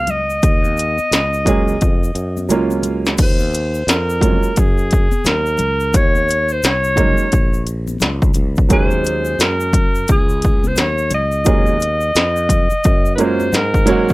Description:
hip hop, jazz-hop; 87 BPM; 4/4; swing 62% on 16ths; Eb dorian; A4 = 436 Hz
breathy alto saxophone; melody; 0.0-14.1 s; Ab4 to F5; -19 LUFS; equal
sustaining fretless electric bass; bass; 0.0-14.1 s; Bb1 to Ab2; -21 LUFS; equal
industrial drum kit; drums; 0.1-14.1 s; crash cymbal, hi-hat, kick drum, snare drum; -15 LUFS; equal
congas and egg shaker; percussion; 0.1-14.1 s; -30 LUFS; left 4 dB
warm grand piano; accompaniment; 1.5-14.1 s; Gb3 to Ab4; -18 LUFS; right 4 dB; plate reverb
light reverb; -13 LUFS; side -20 dB against mid
0.0-3.2 A section; 3.2-14.1 B section
drum fill 1.8-3.2
0.0 Ebm11

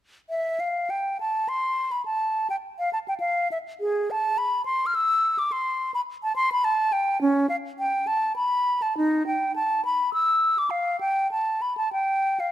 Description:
classical, baroque-style fantasia for unaccompanied flute; 104 BPM; 3/4; rubato; A minor; A4 = 440 Hz
mellow silver concert flute; solo; 0.3-12.5 s; C#4 to F6; -22 LUFS; equal
moderate recital hall reverb, RT60 1.6 s; close, detailed microphones; -22 LUFS; side -12 dB against mid
0.3-12.5 A section

